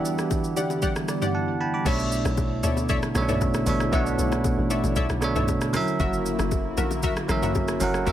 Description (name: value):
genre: amapiano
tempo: 116 BPM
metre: 4/4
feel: straight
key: B minor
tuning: A4 = 436 Hz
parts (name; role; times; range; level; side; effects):
- bell-like tine electric piano; accompaniment; 0.0-8.1 s; B2 to D6; -26 LUFS; right 3 dB; none
- hollow soft pad; sustained chords; 0.0-8.1 s; D3 to G4; -31 LUFS; left 2 dB; chorus, sidechain pumping
- punchy chord stab; stabs; 0.0-8.1 s; F#4 to F#5; -31 LUFS; left 2 dB; chorus, digital delay
- smooth R&B drum kit; drums; 0.1-8.1 s; crash cymbal, hi-hat, kick drum, rim click, shaker, toms; -29 LUFS; equal; overdrive
- bongos and congas; percussion; 0.3-8.1 s; none; -35 LUFS; left 8 dB; none
- hollow log drum bass; bass; 1.9-8.1 s; F#1 to D2; -28 LUFS; left 1 dB; none
room: digital ambience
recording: none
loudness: -22 LUFS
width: side -11 dB against mid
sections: 0.0-1.9 A section; 1.9-8.1 B section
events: tine electric piano fill 0.8-1.9; drop 1.9-8.1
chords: 0.0 Em9; 1.9 Bm11; 5.7 F#7